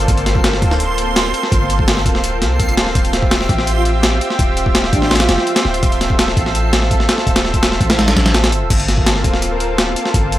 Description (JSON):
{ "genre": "drum and bass, jungle", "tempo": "167 BPM", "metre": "4/4", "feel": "straight", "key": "G minor", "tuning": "A4 = 441 Hz", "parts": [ { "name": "lush unison pad", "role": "sustained chords", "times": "0.0-10.4 s", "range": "Bb3 to E5", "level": "-20 LUFS", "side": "equal", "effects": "chorus, vintage 12-bit sampler grit" }, { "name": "warm 808-style bass", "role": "bass", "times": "0.0-10.4 s", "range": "D1 to C2", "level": "-19 LUFS", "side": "equal", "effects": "none" }, { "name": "breakbeat sampler-style drum kit", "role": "drums", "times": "0.0-10.4 s", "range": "crash cymbal, hi-hat, kick drum, snare drum", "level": "-15 LUFS", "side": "equal", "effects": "small room ambience" }, { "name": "backwards swelling texture", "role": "texture", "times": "0.0-8.7 s", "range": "C6", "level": "-27 LUFS", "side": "right 4 dB", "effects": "built-in reverb" }, { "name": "breathy flute-like synth lead", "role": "melody", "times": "3.8-5.6, 9.5-9.7 s", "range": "D4 to Bb4", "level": "-25 LUFS", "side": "equal", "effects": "lush chorus, dub echo" } ], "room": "digital ambience", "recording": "dry, gritty hardware recording", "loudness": "-12 LUFS", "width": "side -14 dB against mid", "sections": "0.0-8.7 A section; 8.7-10.4 A section", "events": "drop 0.0-8.7, 8.7-10.4", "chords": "0.0 Gm11; 3.0 Dm11; 8.7 Gm11" }